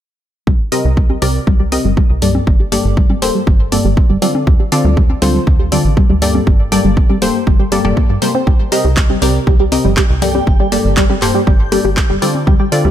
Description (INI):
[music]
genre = progressive house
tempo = 120 BPM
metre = 4/4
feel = straight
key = G minor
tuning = A4 = 441 Hz
[part]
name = tight sequenced synth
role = arpeggios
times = 0.5-12.9 s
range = G2 to C4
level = -18 LUFS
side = equal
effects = chorus, phaser, sidechain pumping, digital delay
[part]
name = tight sequencer bass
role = bass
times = 0.5-12.9 s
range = D1 to G2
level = -17 LUFS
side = equal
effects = sidechain pumping
[part]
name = electronic kick drum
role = drums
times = 0.5-12.6 s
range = none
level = -12 LUFS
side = equal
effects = none
[part]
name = wide unison pluck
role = stabs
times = 0.7-12.9 s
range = G2 to Eb5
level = -17 LUFS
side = left 2 dB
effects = sidechain pumping, digital delay
[part]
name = pop drum kit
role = drums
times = 0.7-12.8 s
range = handclaps, hi-hat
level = -21 LUFS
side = equal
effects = overdrive
[part]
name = congas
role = percussion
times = 1.1-12.4 s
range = none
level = -23 LUFS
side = left 2 dB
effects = overdrive, sidechain pumping on perc
[part]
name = backwards swelling texture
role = texture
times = 10.1-12.9 s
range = G5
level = -28 LUFS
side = right 5 dB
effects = built-in reverb, sidechain pumping
[sound]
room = little or no reverb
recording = none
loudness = -10 LUFS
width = side -11 dB against mid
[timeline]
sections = 0.5-12.9 A section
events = filter sweep on synth arpeggio sound 0.5-12.9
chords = 0.5 Cm7; 2.5 Gmadd9; 4.5 Dm7; 6.5 Gmadd9; 8.5 Cm7; 10.5 Gmadd9